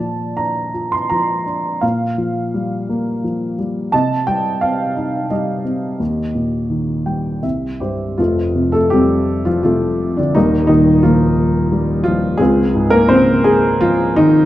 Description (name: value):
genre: classical, lyrical solo piano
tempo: 79-90 BPM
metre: 3/4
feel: rubato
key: unclear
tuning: A4 = 439 Hz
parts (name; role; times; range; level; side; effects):
- dark upright piano; solo; 0.0-14.5 s; Eb1 to C6; -14 LUFS; equal; none
room: moderate recital hall reverb, RT60 1.6 s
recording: dark, warm production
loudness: -14 LUFS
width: side -14 dB against mid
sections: 0.0-8.2 A section; 8.2-14.5 B section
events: upright piano fill 6.7-8.2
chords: 0.0 Bbmaj7; 1.8 Gm7/Bb; 3.9 Cm; 6.0 Eb; 7.4 C; 8.2 F; 10.4 Ebadd9; 12.4 Dbmaj7